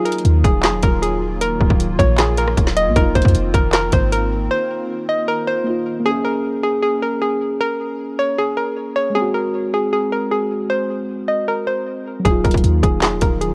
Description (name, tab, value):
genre	hip hop, trap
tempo	155 BPM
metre	4/4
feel	half-time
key	Bb minor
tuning	A4 = 440 Hz
part	hollow square pluck	melody	0.0-13.5 s	Ab4 to Eb5	-22 LUFS	equal	chorus, tape echo
part	muted felt-like synth keys	accompaniment	0.0-13.5 s	Gb3 to Ab4	-26 LUFS	equal	chorus
part	hollow soft pad	sustained chords	0.0-6.0, 12.2-13.5 s	Eb3 to F4	-31 LUFS	equal	ensemble chorus
part	trap drum kit	drums	0.1-4.2, 12.3-13.5 s	handclaps, hi-hat, kick drum, rim click, snare drum	-19 LUFS	equal	none
part	clean 808-style bass	bass	0.3-4.5, 12.3-13.5 s	Db1 to F2	-21 LUFS	equal	none
room	little or no reverb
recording	worn, warbling old tape, cassette tape, warbly pitch drift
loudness	-18 LUFS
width	mono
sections	0.0-6.1 A section; 6.1-13.5 A section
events	break 0.0, 4.5-6.1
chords	0.0 Ebmadd9; 3.0 F7sus4; 6.1 Bbm7; 9.2 Ab7; 12.3 Ebmadd9